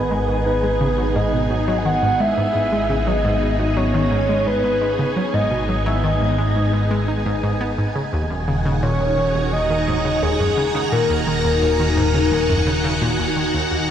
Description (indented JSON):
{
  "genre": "ambient, sequencer-driven space music",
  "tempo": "86 BPM",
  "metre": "4/4",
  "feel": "straight",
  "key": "G# minor",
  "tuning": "A4 = 440 Hz",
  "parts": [
    { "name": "soft octave-layered synth lead", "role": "melody", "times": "0.0-13.3 s", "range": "G#4 to G#5", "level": "-22 LUFS", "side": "left 1 dB", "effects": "chorus, shimmer reverb, analog delay" },
    { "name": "phased string machine", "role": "sustained chords", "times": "0.0-13.9 s", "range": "D#3 to A#5", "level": "-23 LUFS", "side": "equal", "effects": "ensemble chorus, phaser, shimmer reverb" },
    { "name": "fat analog bass", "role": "bass", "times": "0.0-13.9 s", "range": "D#1 to G#1", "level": "-23 LUFS", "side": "equal", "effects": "none" },
    { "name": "wind-like tuned noise texture", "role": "texture", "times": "0.0-13.9 s", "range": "G#5", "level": "-32 LUFS", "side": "right 3 dB", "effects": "built-in reverb, shimmer reverb" },
    { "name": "analog pluck", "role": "riff", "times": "0.1-13.8 s", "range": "D#2 to D#4", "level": "-23 LUFS", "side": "equal", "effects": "chorus, shimmer reverb, analog delay" }
  ],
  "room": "wet concert hall reverb, RT60 2.4 s",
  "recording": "none",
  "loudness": "-17 LUFS",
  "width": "side -9 dB against mid",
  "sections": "0.0-13.9 A section",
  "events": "none",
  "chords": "0.0 G#m; 8.1 D#m",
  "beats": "0.46 1.15 1.85 | 2.55 3.25 3.94 4.64 | 5.34 6.04 6.74 7.43 | 8.13 8.83 9.53 10.22 | 10.92 11.62 12.32 13.02 | 13.71"
}